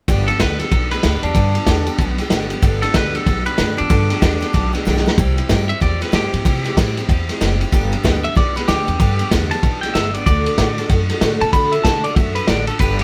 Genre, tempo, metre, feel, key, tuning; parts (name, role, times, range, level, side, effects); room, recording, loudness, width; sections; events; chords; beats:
rockabilly; 189 BPM; 4/4; swing 62% on 8ths; G major; A4 = 440 Hz
picked steel-string acoustic guitar; accompaniment; 0.1-13.0 s; G2 to A4; -26 LUFS; equal
upright bass; bass; 0.1-13.0 s; F#1 to D3; -23 LUFS; equal
vintage drum kit; drums; 0.1-13.0 s; kick drum, ride cymbal, snare drum; -20 LUFS; equal
clean electric guitar; melody; 0.3-13.0 s; D4 to B5; -24 LUFS; equal; phaser
light reverb; band playing live in one room; -17 LUFS; mono
0.1-13.0 A section
drum fill 4.9-5.2
0.1 G; 5.2 C; 7.7 G; 10.3 D
| 0.08 0.40 0.72 1.04 | 1.36 1.68 2.00 2.32 | 2.63 2.95 3.27 3.59 | 3.91 4.23 4.55 4.86 | 5.18 5.50 5.82 6.14 | 6.46 6.77 7.09 7.41 | 7.73 8.04 8.36 8.68 | 9.00 9.31 9.63 9.95 | 10.27 10.58 10.90 11.22 | 11.54 11.85 12.17 12.49 | 12.80